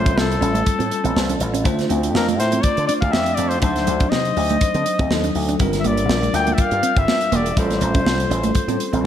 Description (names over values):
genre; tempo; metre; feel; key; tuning
polished 1980s jazz-funk pop; 122 BPM; 4/4; swing 54% on 16ths; unclear; A4 = 440 Hz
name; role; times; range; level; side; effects
clear flugelhorn; melody; 0.0-9.1 s; A4 to G5; -22 LUFS; left 3 dB; slapback echo
bell-like tine electric piano; accompaniment; 0.0-9.1 s; F#3 to C5; -24 LUFS; left 2 dB; medium stereo tremolo, wide subtle chorus, slapback echo
mellow electric guitar; riff; 0.0-9.0 s; A3 to D4; -26 LUFS; right 5 dB; wide subtle chorus
slap bass with an envelope filter; bass; 0.0-9.1 s; E1 to D3; -23 LUFS; equal; none
tight funk drum kit; drums; 0.1-9.0 s; hi-hat, kick drum, snare drum; -22 LUFS; equal; none
room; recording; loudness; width
moderate lush hall reverb, RT60 2.7 s; big arena sound; -16 LUFS; side -10 dB against mid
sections
0.0-9.1 A section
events
none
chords
0.0 A7alt; 1.7 Dm7; 3.6 D7b9; 5.6 Gm7; 7.6 A7alt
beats
0.18 0.67 1.16 | 1.66 2.15 2.64 3.13 | 3.63 4.12 4.61 5.11 | 5.60 6.09 6.58 7.08 | 7.57 8.06 8.55 9.05